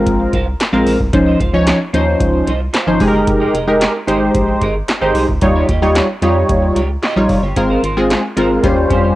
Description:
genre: early-eighties boogie funk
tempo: 112 BPM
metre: 4/4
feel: straight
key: F minor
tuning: A4 = 440 Hz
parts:
  - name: funky polysynth comp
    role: accompaniment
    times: 0.0-9.2 s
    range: F3 to Db5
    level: -14 LUFS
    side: equal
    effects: chorus
  - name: rubbery square bass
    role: bass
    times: 0.0-9.1 s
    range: F1 to F2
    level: -19 LUFS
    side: equal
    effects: none
  - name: electro analog drum machine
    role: drums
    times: 0.1-9.0 s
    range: handclaps, hi-hat, kick drum, snare drum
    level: -19 LUFS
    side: equal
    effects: cassette tape
  - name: semi-hollow electric guitar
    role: riff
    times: 0.2-9.2 s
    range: Db4 to F5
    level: -25 LUFS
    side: right 3 dB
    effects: analog chorus
room: light reverb, digital ambience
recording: home recording on cassette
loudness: -12 LUFS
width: side -16 dB against mid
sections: 0.0-9.2 A section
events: none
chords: 0.0 Ab69; 1.1 Dbmaj9; 3.0 Fm11; 5.4 Eb9; 7.6 Ab69; 8.6 Eb13

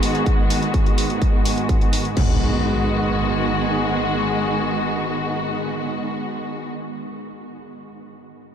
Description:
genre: melodic techno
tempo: 126 BPM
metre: 4/4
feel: straight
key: G# minor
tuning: A4 = 441 Hz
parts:
  - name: muted studio string section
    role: sustained chords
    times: 0.0-6.7 s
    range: D#3 to F#4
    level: -22 LUFS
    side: equal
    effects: sidechain pumping, low-pass filter
  - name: analog drone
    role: drone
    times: 0.0-6.7 s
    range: G#2 to G#3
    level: -28 LUFS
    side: equal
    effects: chorus, sidechain pumping
  - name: techno drum kit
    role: drums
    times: 0.0-2.3 s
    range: crash cymbal, hi-hat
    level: -30 LUFS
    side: equal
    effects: none
  - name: electronic kick drum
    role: drums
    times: 0.3-2.3 s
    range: none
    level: -19 LUFS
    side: equal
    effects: distortion
  - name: impact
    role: sound effects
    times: 2.2-6.7 s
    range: none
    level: -28 LUFS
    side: equal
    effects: none
room: moderate huge ambient reverb, RT60 8.4 s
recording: dreamy mix soaked in reverb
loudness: -18 LUFS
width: side -8 dB against mid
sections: 0.0-2.2 A section; 2.2-6.0 B section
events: none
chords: 0.0 G#m7

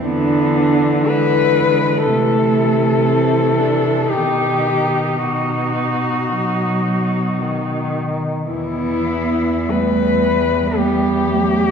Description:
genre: classical, lyrical piece for cello ensemble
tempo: 48-63 BPM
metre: 4/4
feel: rubato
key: E minor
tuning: A4 = 440 Hz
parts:
  - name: muted cello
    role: melody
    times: 0.0-11.7 s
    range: D4 to B4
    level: -18 LUFS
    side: left 3 dB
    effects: none
  - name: muted cello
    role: second line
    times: 0.0-11.7 s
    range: G3 to D#4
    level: -22 LUFS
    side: right 5 dB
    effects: none
  - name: muted cello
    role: accompaniment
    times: 0.0-11.7 s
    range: B2 to G3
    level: -22 LUFS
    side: left 2 dB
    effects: none
  - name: muted cello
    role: bass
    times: 0.0-11.7 s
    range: E2 to D3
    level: -21 LUFS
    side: right 2 dB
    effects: none
room: wet concert hall reverb, RT60 2.4 s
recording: heard from further back in the room, nothing above 11.0 kHz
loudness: -15 LUFS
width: side -6 dB against mid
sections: 0.0-11.7 A section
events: none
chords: 0.0 E7/D; 2.1 Am/C; 4.1 B; 8.5 Em

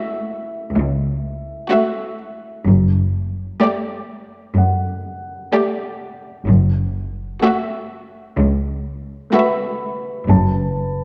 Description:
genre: cinematic, suspense film score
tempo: 63 BPM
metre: 4/4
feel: straight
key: F# phrygian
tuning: A4 = 441 Hz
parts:
  - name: warm symphonic violin section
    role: melody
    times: 0.0-10.1 s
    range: D5 to E5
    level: -27 LUFS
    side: equal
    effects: none
  - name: warm symphonic violin section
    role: second line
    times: 0.0-10.1 s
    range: F#4 to G4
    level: -25 LUFS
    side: equal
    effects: none
  - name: dark symphonic viola section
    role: accompaniment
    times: 0.0-10.1 s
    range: A3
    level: -25 LUFS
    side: equal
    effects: none
  - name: dark grand piano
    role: texture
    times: 0.0-11.0 s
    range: E4 to B5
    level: -29 LUFS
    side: equal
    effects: none
  - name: rich symphonic cello section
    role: bass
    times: 0.8-11.0 s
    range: C#2 to F#2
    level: -20 LUFS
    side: equal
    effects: none
  - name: warm symphonic double bass section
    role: bass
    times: 2.7-11.0 s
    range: F#1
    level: -20 LUFS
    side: equal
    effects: none
room: wet scoring stage reverb, RT60 2.0 s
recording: dark, warm production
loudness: -19 LUFS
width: mono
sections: 0.0-11.0 A section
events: none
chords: 0.0 F#m7; 2.7 Gsus2/F#; 6.5 F#m7; 10.3 B5/F#

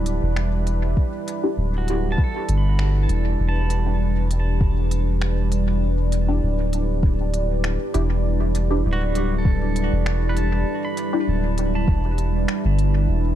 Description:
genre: ambient dub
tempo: 99 BPM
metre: 4/4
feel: swing 54% on 16ths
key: E minor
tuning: A4 = 440 Hz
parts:
  - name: deep dark ambient pad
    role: sustained chords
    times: 0.0-13.4 s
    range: G3 to D5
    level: -26 LUFS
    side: right 1 dB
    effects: chorus, built-in reverb
  - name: soft dub sub bass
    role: bass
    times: 0.0-13.4 s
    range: D1 to G1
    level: -21 LUFS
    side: equal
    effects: none
  - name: organic electronic drum kit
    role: drums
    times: 0.1-12.9 s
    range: finger snaps, hi-hat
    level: -34 LUFS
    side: equal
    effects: studio reverb, dub echo
  - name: electronic kick drum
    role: drums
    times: 1.0-12.0 s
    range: none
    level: -19 LUFS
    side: equal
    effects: studio reverb
  - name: filtered dub chord stab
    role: stabs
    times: 1.4-11.2 s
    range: D4 to G4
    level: -29 LUFS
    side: left 2 dB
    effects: phaser, lush chorus, cassette tape, dub echo
  - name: pedal steel guitar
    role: arpeggios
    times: 1.8-5.1, 8.9-13.3 s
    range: G3 to B5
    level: -32 LUFS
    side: right 3 dB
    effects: tape echo
room: little or no reverb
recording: dark, warm production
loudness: -19 LUFS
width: side -12 dB against mid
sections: 0.0-3.4 A section; 3.4-13.4 B section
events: band accent 2.8-3.1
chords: 0.0 Em7

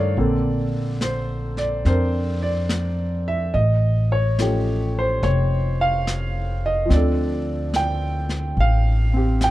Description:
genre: jazz ballad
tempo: 71 BPM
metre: 4/4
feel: swing 68% on 8ths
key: Bb major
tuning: A4 = 439 Hz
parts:
  - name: warm concert grand piano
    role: accompaniment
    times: 0.0-9.5 s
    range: D3 to G5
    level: -23 LUFS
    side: right 1 dB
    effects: none
  - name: upright bass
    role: bass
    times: 0.0-9.5 s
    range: E#1 to G2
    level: -21 LUFS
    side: equal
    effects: none
  - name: vintage brush drum kit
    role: drums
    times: 0.2-9.5 s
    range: brushed snare drum, hi-hat, snare drum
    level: -30 LUFS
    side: left 1 dB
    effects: none
room: little or no reverb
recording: dark, warm production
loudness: -19 LUFS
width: side -16 dB against mid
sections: 0.2-9.5 A section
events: none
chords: 0.2 Bbmaj9; 3.5 Aaug7; 6.9 Dm7

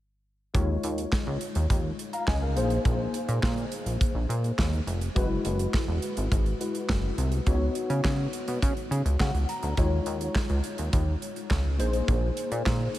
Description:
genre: early-eighties boogie funk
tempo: 104 BPM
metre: 4/4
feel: straight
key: Eb minor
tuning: A4 = 441 Hz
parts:
  - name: tine electric piano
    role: accompaniment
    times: 0.5-13.0 s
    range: Ab3 to Bb5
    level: -32 LUFS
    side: left 2 dB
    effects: ensemble chorus
  - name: chorused synth bass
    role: bass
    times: 0.5-12.9 s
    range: Fb1 to Db3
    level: -27 LUFS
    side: equal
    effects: none
  - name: modern studio drum kit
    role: drums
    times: 0.5-13.0 s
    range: handclaps, hi-hat, kick drum, snare drum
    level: -29 LUFS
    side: equal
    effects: none
room: light reverb, small room ambience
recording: none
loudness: -25 LUFS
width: side -14 dB against mid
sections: 0.5-13.0 A section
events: tine electric piano fill 8.9-9.8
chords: 0.5 Eb9sus4; 2.6 Bb9sus4; 5.2 Gb9sus4; 7.5 Db9sus4; 9.8 Eb9sus4; 11.8 Bb9sus4

